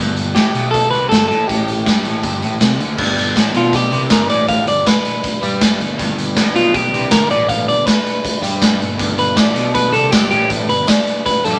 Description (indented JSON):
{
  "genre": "indie rock",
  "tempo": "160 BPM",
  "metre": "4/4",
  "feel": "straight",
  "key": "G major",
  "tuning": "A4 = 439 Hz",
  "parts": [
    { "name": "crunchy overdriven guitar", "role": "riff", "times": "0.0-11.6 s", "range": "G2 to G3", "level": "-24 LUFS", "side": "equal", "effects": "phaser" },
    { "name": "fuzz picked electric bass", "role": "bass", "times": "0.0-11.6 s", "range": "G1 to G2", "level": "-27 LUFS", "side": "equal", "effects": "overdrive" },
    { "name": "raw garage drum kit", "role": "drums", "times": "0.2-11.5 s", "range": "crash cymbal, hi-hat, kick drum, snare drum", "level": "-19 LUFS", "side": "equal", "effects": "none" },
    { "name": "clean electric guitar", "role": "melody", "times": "0.3-11.6 s", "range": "F4 to F5", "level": "-20 LUFS", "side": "equal", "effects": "none" },
    { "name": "tonewheel organ", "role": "sustained chords", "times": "3.0-11.6 s", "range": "G3 to B4", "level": "-30 LUFS", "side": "equal", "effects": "slow rotary speaker" },
    { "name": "tambourine", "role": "percussion", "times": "9.4-11.0 s", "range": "none", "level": "-36 LUFS", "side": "equal", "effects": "none" }
  ],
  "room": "moderate studio reverb, RT60 0.7 s",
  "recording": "none",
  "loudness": "-15 LUFS",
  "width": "mono",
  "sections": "0.0-3.0 A section; 3.0-11.6 B section",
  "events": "clean electric guitar solo 3.0-11.6",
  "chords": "0.0 G",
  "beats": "0.36 0.73 1.11 | 1.48 1.86 2.23 2.61 | 2.98 3.36 3.73 4.11 | 4.49 4.86 5.24 5.61 | 5.99 6.37 6.74 7.12 | 7.49 7.87 8.24 8.62 | 9.00 9.37 9.75 10.13 | 10.50 10.88 11.26"
}